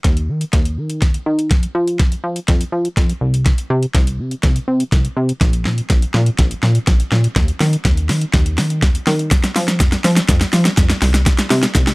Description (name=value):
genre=dance-pop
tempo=123 BPM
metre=4/4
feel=straight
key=unclear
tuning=A4 = 440 Hz
part: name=plucky analog bass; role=bass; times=0.0-11.9 s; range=Bb1 to F3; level=-17 LUFS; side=equal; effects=sidechain pumping
part: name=pop drum kit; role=drums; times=0.0-11.9 s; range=hi-hat, kick drum, shaker, snare drum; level=-15 LUFS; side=equal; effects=none
room=digital ambience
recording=dry, gritty hardware recording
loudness=-14 LUFS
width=side -25 dB against mid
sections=0.0-11.9 A section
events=build-up 0.0-11.9; drum fill 0.0-11.9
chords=none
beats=0.04 0.53 1.02 | 1.51 2.00 2.48 2.97 | 3.46 3.95 4.43 4.92 | 5.41 5.90 6.39 6.87 | 7.36 7.85 8.34 8.82 | 9.31 9.80 10.29 10.78 | 11.26 11.75